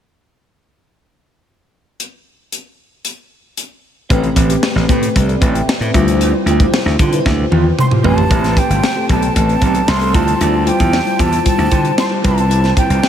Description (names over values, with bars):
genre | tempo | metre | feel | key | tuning
polished 1980s jazz-funk pop | 114 BPM | 4/4 | straight | A minor | A4 = 440 Hz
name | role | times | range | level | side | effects
tight funk drum kit | drums | 2.0-13.1 s | hi-hat, kick drum, snare drum, toms | -16 LUFS | equal | none
bell-like FM electric piano | accompaniment | 4.1-13.1 s | G3 to G5 | -18 LUFS | left 2 dB | lush chorus
electric guitar through a small old amp | riff | 4.1-13.0 s | C4 to D5 | -23 LUFS | right 5 dB | ensemble chorus
slap bass | bass | 4.1-13.0 s | G1 to D3 | -16 LUFS | equal | none
breathy jazz flute | melody | 7.8-13.1 s | G5 to C6 | -18 LUFS | right 2 dB | ping-pong delay
room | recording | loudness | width
moderate huge ambient reverb, RT60 7.8 s | dreamy mix soaked in reverb | -11 LUFS | side -9 dB against mid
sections
2.0-4.1 A section; 4.1-8.3 B section; 8.3-13.1 C section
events
drum fill 7.3-8.3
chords
2.0 N.C.; 4.1 Am9; 5.9 Dm11; 8.0 Am9; 10.1 Dm11; 12.2 Cmaj7